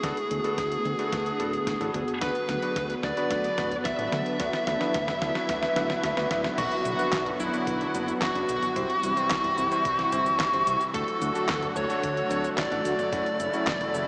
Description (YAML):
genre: synthwave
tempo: 110 BPM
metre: 4/4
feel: straight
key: B dorian, B minor from 6.6 s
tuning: A4 = 440 Hz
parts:
  - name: fuzz lead guitar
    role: melody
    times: 0.0-14.1 s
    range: E4 to E5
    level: -27 LUFS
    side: equal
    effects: distortion, diffuse ambient delay
  - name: lush unison pad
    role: sustained chords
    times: 0.0-14.1 s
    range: C3 to F#4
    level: -31 LUFS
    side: equal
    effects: chorus, sidechain pumping
  - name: bright electric grand piano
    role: stabs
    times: 0.0-13.6 s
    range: G3 to C5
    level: -33 LUFS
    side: equal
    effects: none
  - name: fat analog bass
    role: bass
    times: 0.0-14.0 s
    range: D1 to D2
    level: -35 LUFS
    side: equal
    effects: none
  - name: detuned 8-bit digital drum machine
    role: drums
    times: 0.0-14.1 s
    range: crash cymbal, handclaps, hi-hat, shaker, snare drum, toms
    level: -34 LUFS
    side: equal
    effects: none
  - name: electronic kick drum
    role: drums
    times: 0.0-13.8 s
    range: none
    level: -41 LUFS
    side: equal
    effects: none
  - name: impact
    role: sound effects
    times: 6.6-8.8 s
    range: none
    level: -44 LUFS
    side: equal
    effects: none
room: wet huge ambient reverb, RT60 8.9 s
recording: dreamy mix soaked in reverb, small speaker sound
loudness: -24 LUFS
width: side -28 dB against mid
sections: 0.0-6.6 A section; 6.6-14.1 B section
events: drum fill 0.0-6.6; filter sweep on analog synth pad 0.0-6.6; impact 6.6-8.8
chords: 0.0 D6; 2.2 Bm/D; 6.6 Bm; 8.8 C; 10.9 D; 13.1 F#m7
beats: | 0.04 0.58 1.13 1.67 | 2.22 2.76 3.31 3.85 | 4.40 4.94 5.49 6.04 | 6.58 7.13 7.67 8.22 | 8.76 9.31 9.85 10.40 | 10.94 11.49 12.04 12.58 | 13.13 13.67